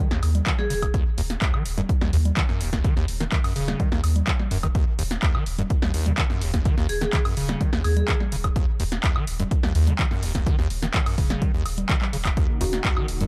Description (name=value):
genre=acid house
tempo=126 BPM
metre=4/4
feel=straight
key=Eb minor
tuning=A4 = 440 Hz
part: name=liquid acid bass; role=riff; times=0.0-13.2 s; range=Eb2 to Eb3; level=-31 LUFS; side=equal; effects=chorus, tube saturation, sidechain pumping, tape echo
part: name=punchy analog drum machine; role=drums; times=0.1-13.3 s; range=congas, handclaps, hi-hat, snare drum, woodblock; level=-31 LUFS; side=equal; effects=overdrive
part: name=saturated sub bass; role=bass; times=0.2-13.3 s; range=Eb1 to Eb2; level=-27 LUFS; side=equal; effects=sidechain pumping
part: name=electronic kick drum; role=drums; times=0.5-12.9 s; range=none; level=-25 LUFS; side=equal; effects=overdrive
part: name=vibraphone with hard mallets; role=melody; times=0.6-0.8, 6.9-8.0 s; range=Ab4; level=-34 LUFS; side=equal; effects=tape echo
part: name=warm analog pad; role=sustained chords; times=12.4-13.3 s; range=Db3 to Gb4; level=-36 LUFS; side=equal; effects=chorus, sidechain pumping
part: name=deep mellow chord stab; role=stabs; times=12.6-12.7 s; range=Bb3 to Gb4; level=-33 LUFS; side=equal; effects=chorus, tape echo
room=little or no reverb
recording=none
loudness=-23 LUFS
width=mono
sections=0.0-13.3 A section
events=drum fill 12.0-12.4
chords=0.0 Ebm7